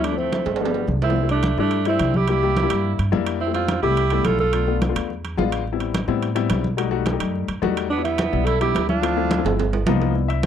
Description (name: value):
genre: Afro-Cuban jazz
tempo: 214 BPM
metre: 4/4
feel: straight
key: C major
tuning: A4 = 440 Hz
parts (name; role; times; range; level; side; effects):
- breathy alto saxophone; melody; 0.0-4.8, 7.9-9.7 s; B3 to A4; -23 LUFS; right 2 dB; none
- bright tenor saxophone; second line; 0.0-4.8, 7.9-9.6 s; G3 to F4; -28 LUFS; right 14 dB; none
- warm baby grand piano; accompaniment; 0.0-10.5 s; F3 to E5; -25 LUFS; left 14 dB; none
- upright bass; bass; 0.0-10.5 s; G1 to A2; -24 LUFS; right 1 dB; none
- congas; percussion; 0.0-10.5 s; none; -27 LUFS; equal; none
- timbales; percussion; 0.0-10.5 s; none; -29 LUFS; right 7 dB; none
room: little or no reverb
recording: dry, close 1970s-style studio recording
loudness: -19 LUFS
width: side -9 dB against mid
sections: 0.0-1.2 A section; 1.2-10.2 B section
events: drum fill 0.5-1.2, 9.5-10.2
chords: 0.0 Dm7; 0.6 G9; 1.2 C69; 2.3 C9; 3.4 Fmaj9#11; 4.5 Bm7b5; 5.1 E7b9; 5.7 Am9; 6.8 B7b13; 7.9 Em7; 9.0 Dm9; 9.6 G7alt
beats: | 0.04 0.32 0.60 0.88 | 1.16 1.44 1.72 2.00 | 2.29 2.57 2.85 3.13 | 3.41 3.69 3.97 4.25 | 4.53 4.81 5.09 5.37 | 5.65 5.93 6.22 6.50 | 6.78 7.06 7.34 7.62 | 7.90 8.18 8.47 8.75 | 9.03 9.31 9.59 9.87 | 10.15 10.44